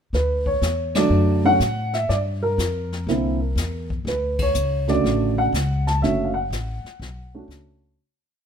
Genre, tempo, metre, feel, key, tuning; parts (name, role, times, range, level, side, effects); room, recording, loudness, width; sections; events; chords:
jazz piano trio; 122 BPM; 4/4; swing 67% on 8ths; D major; A4 = 440 Hz
dark upright piano; melody; 0.1-8.0 s; C#3 to A5; -21 LUFS; right 1 dB
upright bass; bass; 0.1-8.0 s; F#1 to A2; -24 LUFS; left 1 dB
jazz brush drum kit; drums; 0.1-8.4 s; brushed snare drum, hi-hat, kick drum, ride cymbal, snare drum; -30 LUFS; left 3 dB
light reverb; minimal, uncompressed stereo recording; -19 LUFS; side -7 dB against mid
0.1-8.0 A section
band accent 0.9, 4.3; fade-out 6.0-8.0
0.1 Dmaj7; 2.1 Gm7; 3.1 C9; 4.1 Dmaj7